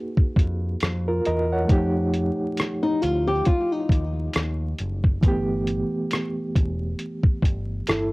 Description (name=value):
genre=lo-fi hip hop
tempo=68 BPM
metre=4/4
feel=swing 58% on 16ths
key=unclear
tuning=A4 = 441 Hz
part: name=bright reed electric piano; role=accompaniment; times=0.0-8.1 s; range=E3 to F#5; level=-27 LUFS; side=right 1 dB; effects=fast tremolo, cassette tape
part: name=lo-fi sampler-style drum kit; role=drums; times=0.2-8.1 s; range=hi-hat, kick drum, rim click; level=-20 LUFS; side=equal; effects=none
part: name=deep dub picked electric bass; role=bass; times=0.4-8.1 s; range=E1 to E#2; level=-27 LUFS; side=equal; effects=none
part: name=flamenco guitar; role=second line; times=2.8-5.0 s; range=Eb4 to G4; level=-24 LUFS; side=left 2 dB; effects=tape echo
room=light reverb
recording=home recording on cassette, vinyl crackle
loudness=-21 LUFS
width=side -23 dB against mid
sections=0.0-8.1 A section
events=none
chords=0.0 F#69; 1.7 F9; 5.2 G69